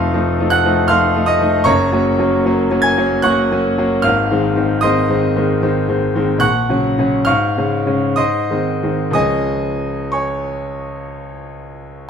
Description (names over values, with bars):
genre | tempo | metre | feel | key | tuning
classical, romantic character piece for solo piano | 59-79 BPM | 3/4 | rubato | Db major | A4 = 438 Hz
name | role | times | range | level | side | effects
bright concert grand piano | solo | 0.0-12.1 s | F1 to Ab6 | -14 LUFS | equal | none
room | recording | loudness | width
moderate recital hall reverb, RT60 1.7 s | close, detailed microphones | -14 LUFS | side -7 dB against mid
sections
0.0-12.1 A section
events
none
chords
0.0 F7; 1.7 Gb; 4.1 Ab; 6.4 Gb/Bb; 7.3 Db/Ab; 8.2 Ab; 9.2 Db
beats
0.15 0.92 | 1.68 2.46 3.27 | 4.06 4.84 5.63 | 6.42 7.27 8.18 | 9.16 10.14 11.12